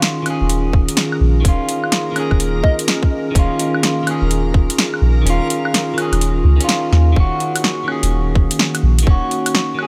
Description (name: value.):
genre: future garage.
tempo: 126 BPM.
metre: 4/4.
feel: swing 64% on 16ths.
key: unclear.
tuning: A4 = 440 Hz.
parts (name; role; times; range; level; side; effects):
clean electric guitar; accompaniment; 0.0-9.9 s; Eb3 to Ab4; -25 LUFS; equal; vintage 12-bit sampler grit, sidechain pumping, tape echo.
warbly tape-like pad; sustained chords; 0.0-9.9 s; Eb3 to Ab4; -25 LUFS; equal; chorus, built-in reverb, sidechain pumping.
garage drum kit; drums; 0.0-9.9 s; claves, hi-hat, snare drum; -21 LUFS; equal; none.
backwards swelling texture; texture; 0.9-7.2 s; Bb3 to Bb4; -35 LUFS; equal; built-in reverb.
soft 808-style bass; bass; 0.4-9.2 s; Eb1 to Eb2; -17 LUFS; equal; sidechain pumping.
electronic kick drum; drums; 0.7-9.2 s; none; -15 LUFS; equal; none.
soft struck synth lead; melody; 2.6-2.8 s; Eb5; -28 LUFS; equal; chorus, analog delay.
room: light reverb, digital ambience.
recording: none.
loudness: -16 LUFS.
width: mono.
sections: 0.0-7.2 A section; 7.2-9.9 A section.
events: kick drops out 5.3-7.2.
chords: 0.0 Dbadd9/Eb; 7.2 Ebm7.